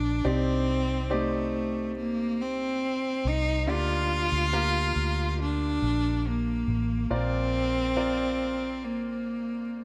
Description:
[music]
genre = pop ballad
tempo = 70 BPM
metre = 4/4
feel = straight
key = Bb major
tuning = A4 = 440 Hz
[part]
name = rich cello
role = melody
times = 0.0-9.8 s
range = A3 to F4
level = -30 LUFS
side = equal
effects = analog delay
[part]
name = clear grand piano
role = accompaniment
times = 0.0-9.8 s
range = Bb2 to D5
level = -35 LUFS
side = equal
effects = none
[part]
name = vintage muted fingered electric bass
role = bass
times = 0.0-9.8 s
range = A1 to D2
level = -32 LUFS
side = equal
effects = none
[sound]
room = light reverb, small room ambience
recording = echo-heavy mix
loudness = -28 LUFS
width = mono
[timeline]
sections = 0.0-9.8 A section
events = none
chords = 0.2 Cmadd9; 3.7 Bb6/D; 7.1 Bbadd9

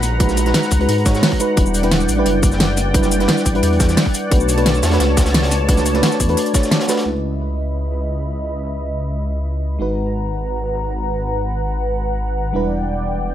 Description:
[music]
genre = liquid drum and bass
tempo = 175 BPM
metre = 4/4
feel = straight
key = C# minor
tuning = A4 = 440 Hz
[part]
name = mellow FM electric piano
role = accompaniment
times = 0.0-13.3 s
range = G3 to C#5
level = -21 LUFS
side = right 1 dB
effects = chorus, low-pass filter, tape echo
[part]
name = warm analog pad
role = sustained chords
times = 0.0-13.3 s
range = B4 to B5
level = -25 LUFS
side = equal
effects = chorus
[part]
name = swelling detuned saw bass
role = bass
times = 0.0-13.3 s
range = E1 to G#2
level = -20 LUFS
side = equal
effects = none
[part]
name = crunchy breakbeat drum kit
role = drums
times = 0.0-7.1 s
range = hi-hat, snare drum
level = -26 LUFS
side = equal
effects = high-pass filter on hats, high-pass filter on snare, high-pass filter on room
[part]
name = pop drum kit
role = drums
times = 0.0-7.0 s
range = hi-hat, shaker, snare drum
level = -19 LUFS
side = equal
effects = low-pass filter on hats, low-pass filter on perc, low-pass filter on snare
[part]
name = electronic kick drum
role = drums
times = 0.2-6.6 s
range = none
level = -16 LUFS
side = equal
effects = overdrive
[sound]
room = light reverb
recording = none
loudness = -15 LUFS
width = side -11 dB against mid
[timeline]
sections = 0.0-7.1 A section; 7.1-13.3 B section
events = filter sweep on analog synth pad 7.1-13.3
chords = 0.0 G#m7; 1.6 Em7; 4.3 Bm7; 7.1 C#m7; 9.8 G#m7; 12.5 Em7

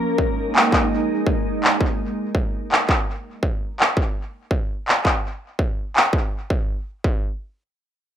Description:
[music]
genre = IDM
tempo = 111 BPM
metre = 4/4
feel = swing 62% on 16ths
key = unclear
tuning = A4 = 440 Hz
[part]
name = glassy FM pad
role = sustained chords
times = 0.0-2.2 s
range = Ab3 to Bb4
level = -23 LUFS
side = right 1 dB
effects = ensemble chorus, built-in reverb
[part]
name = electronic kick drum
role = drums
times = 0.2-7.2 s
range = none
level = -22 LUFS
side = equal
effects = distortion
[part]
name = electronic handclaps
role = drums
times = 0.6-6.1 s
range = none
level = -18 LUFS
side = equal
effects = digital delay
[sound]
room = moderate studio reverb, RT60 0.7 s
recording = rough home demo mix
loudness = -19 LUFS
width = side -10 dB against mid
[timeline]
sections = 0.0-6.5 A section; 6.5-8.2 B section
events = none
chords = 0.0 Ebsus4; 2.2 N.C.

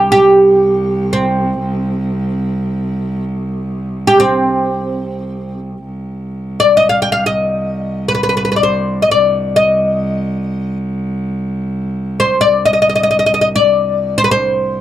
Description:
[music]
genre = Arabic maqam ensemble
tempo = free time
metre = none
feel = none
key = C maqam nahawand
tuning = A4 = 440 Hz
[part]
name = oud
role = melody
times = 0.0-14.8 s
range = C4 to G5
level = -12 LUFS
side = left 1 dB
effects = none
[part]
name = rich cello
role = drone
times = 0.0-14.8 s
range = C2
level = -20 LUFS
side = right 1 dB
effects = stereo widening
[sound]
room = light reverb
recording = dry, close 1970s-style studio recording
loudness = -12 LUFS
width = side -12 dB against mid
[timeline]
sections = 0.0-5.8 A section; 5.8-14.8 A section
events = none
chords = none

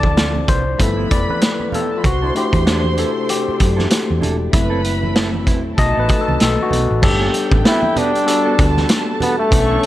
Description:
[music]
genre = lush 1970s-style soul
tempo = 96 BPM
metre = 4/4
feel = swing 58% on 16ths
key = unclear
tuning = A4 = 439 Hz
[part]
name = dark studio violin section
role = second line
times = 0.0-9.9 s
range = F4 to C#6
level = -25 LUFS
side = right 2 dB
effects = none
[part]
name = overdriven tine electric piano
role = accompaniment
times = 0.0-9.9 s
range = E3 to D#5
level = -20 LUFS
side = left 3 dB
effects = none
[part]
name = soft string machine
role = sustained chords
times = 0.0-9.9 s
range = C3 to B4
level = -30 LUFS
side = equal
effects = none
[part]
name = mellow electric guitar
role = riff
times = 0.0-9.9 s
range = F3 to B4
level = -28 LUFS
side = right 6 dB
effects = none
[part]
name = hollow-body short-scale fingered electric bass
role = bass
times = 0.0-9.8 s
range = E1 to F#2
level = -20 LUFS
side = equal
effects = none
[part]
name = vintage drum kit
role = drums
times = 0.0-9.9 s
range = crash cymbal, hi-hat, kick drum, snare drum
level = -17 LUFS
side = equal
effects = none
[part]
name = congas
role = percussion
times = 0.0-9.7 s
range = none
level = -27 LUFS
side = right 3 dB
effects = none
[part]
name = breathy flugelhorn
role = melody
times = 7.7-9.9 s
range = A3 to E4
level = -17 LUFS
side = equal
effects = slapback echo
[sound]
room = light reverb, small room ambience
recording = none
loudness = -14 LUFS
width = side -14 dB against mid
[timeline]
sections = 0.0-7.0 A section; 7.0-9.9 B section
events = tine electric piano solo 0.0-7.0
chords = 0.0 Dm7; 0.8 G13; 2.0 C69; 4.5 F#m7b5; 5.8 B7; 7.0 Gmaj9

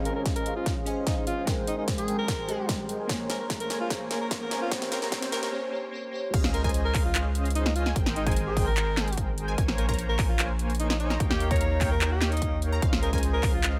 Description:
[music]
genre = future bass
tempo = 148 BPM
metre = 4/4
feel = half-time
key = Db lydian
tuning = A4 = 439 Hz
[part]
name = glassy digital keys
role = accompaniment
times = 0.0-6.4 s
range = Ab3 to Ab5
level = -38 LUFS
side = equal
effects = chorus, sidechain pumping, delay
[part]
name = ethereal airy pad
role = sustained chords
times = 0.0-5.5 s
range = Ab3 to C6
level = -46 LUFS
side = equal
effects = none
[part]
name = soft supersaw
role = riff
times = 0.0-13.8 s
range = Ab3 to Bb5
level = -36 LUFS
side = equal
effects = sidechain pumping, low-pass filter
[part]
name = saturated sub bass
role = bass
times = 0.0-13.8 s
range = Ab1 to Eb2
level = -32 LUFS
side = equal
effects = sidechain pumping, high-pass filter
[part]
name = riser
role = sound effects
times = 0.0-5.5 s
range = none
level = -44 LUFS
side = equal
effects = none
[part]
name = breathy alto saxophone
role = melody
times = 0.1-13.7 s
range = Eb4 to Db5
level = -35 LUFS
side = equal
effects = sidechain pumping, low-pass filter, dub echo
[part]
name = dubstep drum kit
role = drums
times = 0.1-13.7 s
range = crash cymbal, handclaps, hi-hat, snare drum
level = -34 LUFS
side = equal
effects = high-pass filter on snare, high-pass filter on hats, high-pass filter on cymbals
[part]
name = electronic kick drum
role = drums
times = 0.3-13.5 s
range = none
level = -31 LUFS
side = equal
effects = none
[part]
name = unison pluck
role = arpeggios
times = 6.3-13.8 s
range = F5 to Bb5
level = -43 LUFS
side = equal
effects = phaser, sidechain pumping
[sound]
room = digital ambience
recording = high-pass filter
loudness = -27 LUFS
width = mono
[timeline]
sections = 0.0-6.3 A section; 6.3-13.8 B section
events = build-up 0.0-6.3; drum fill 0.0-5.5; filter sweep on supersaw synth 0.0-6.3; filter sweep on alto saxophone 0.0-6.3; filter sweep 0.0-6.3; break 5.5-6.3; drop 6.3-13.8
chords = 0.0 Dbmaj9; 1.5 Abmaj9; 3.1 Bbm9; 4.7 Eb7; 6.3 Dbmaj9; 8.0 Abmaj9; 9.6 Bbm9; 11.2 Eb9; 12.8 Dbmaj9

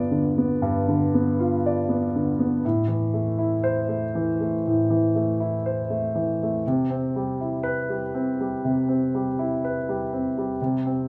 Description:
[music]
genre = neoclassical minimalist piano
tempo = 60 BPM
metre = 4/4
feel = rubato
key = C major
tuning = A4 = 440 Hz
[part]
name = warm baby grand piano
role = solo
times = 0.0-11.1 s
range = G2 to D5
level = -24 LUFS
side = equal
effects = none
[sound]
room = moderate large studio reverb, RT60 1.2 s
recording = band playing live in one room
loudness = -24 LUFS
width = mono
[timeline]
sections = 0.0-11.1 A section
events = none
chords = 0.0 G7; 2.6 Am; 6.6 Cmaj7

